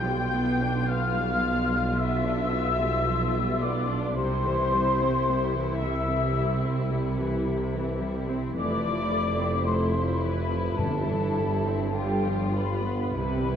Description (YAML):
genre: classical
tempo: 54 BPM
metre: 4/4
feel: rubato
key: C major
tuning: A4 = 440 Hz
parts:
  - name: muted studio violin section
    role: melody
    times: 0.0-13.6 s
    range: E4 to F4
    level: -36 LUFS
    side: left 6 dB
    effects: none
  - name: mellow large flute ensemble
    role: second line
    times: 0.0-13.6 s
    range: G5 to G6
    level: -31 LUFS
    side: left 2 dB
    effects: none
  - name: muted studio violin section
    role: second line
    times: 0.0-13.6 s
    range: G4 to G5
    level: -32 LUFS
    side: left 4 dB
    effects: none
  - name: muted studio viola section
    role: accompaniment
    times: 0.0-13.6 s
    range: C3 to D4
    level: -32 LUFS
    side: left 1 dB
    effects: none
  - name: muted studio cello section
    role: bass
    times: 0.0-13.6 s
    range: F2 to C3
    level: -32 LUFS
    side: right 2 dB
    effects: none
  - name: muted studio double bass section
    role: bass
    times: 0.0-13.6 s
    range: F1 to C2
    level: -32 LUFS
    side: right 2 dB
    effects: none
  - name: warm tuba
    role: bass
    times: 0.0-13.6 s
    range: F1 to C2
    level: -32 LUFS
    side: right 2 dB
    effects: none
  - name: timpani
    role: percussion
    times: 10.8-13.5 s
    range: G2 to C3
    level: -35 LUFS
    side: left 1 dB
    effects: none
room: wet concert hall reverb, RT60 2.1 s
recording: dark, warm production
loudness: -24 LUFS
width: side -8 dB against mid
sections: 0.0-13.6 A section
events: timpani fill 13.2-13.6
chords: 0.0 G7/B; 4.2 C; 8.6 Fmaj7; 10.8 C/G; 11.9 G7